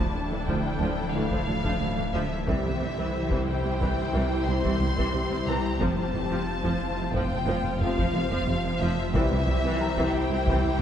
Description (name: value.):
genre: cinematic, hybrid orchestral and electronic film score.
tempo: 90 BPM.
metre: 5/4.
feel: straight.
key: unclear.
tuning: A4 = 438 Hz.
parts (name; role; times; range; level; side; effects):
rich symphonic violin section; melody; 0.0-10.8 s; E5 to C6; -33 LUFS; left 3 dB; none.
dark symphonic violin section; second line; 0.0-10.8 s; E4 to C5; -34 LUFS; left 3 dB; none.
rich symphonic viola section; accompaniment; 0.0-10.8 s; C3 to E4; -32 LUFS; equal; none.
granular cloud pad; sustained chords; 0.0-10.8 s; E3 to A5; -34 LUFS; equal; built-in reverb.
phased detuned saw bass; bass; 0.0-10.8 s; D1 to C2; -32 LUFS; equal; phaser.
rich symphonic cello section; bass; 0.0-10.5 s; C2 to F2; -32 LUFS; right 2 dB; none.
impact; sound effects; 0.0-2.5 s; none; barely audible; none; none.
clear concert grand piano; texture; 0.0-10.8 s; G4 to C6; -43 LUFS; left 2 dB; none.
warm studio double bass section; bass; 0.5-10.5 s; F1 to D2; -32 LUFS; right 2 dB; none.
taiko ensemble; drums; 0.5-10.8 s; none; -33 LUFS; equal; none.
clear trombone section; sustained chords; 1.1-9.4 s; C3 to A3; -40 LUFS; right 3 dB; none.
dark French horn section; sustained chords; 1.1-9.4 s; E3 to F4; -38 LUFS; left 3 dB; none.
room: wet concert hall reverb, RT60 2.5 s.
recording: dark, warm production.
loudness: -24 LUFS.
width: side -9 dB against mid.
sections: 0.0-10.8 A section.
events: impact 0.0-2.5.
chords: 0.0 Dmadd9; 2.5 C; 5.8 F; 9.1 C.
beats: 0.47 1.14 1.81 | 2.47 3.14 3.81 4.47 5.14 | 5.81 6.47 7.14 7.81 8.47 | 9.14 9.81 10.47.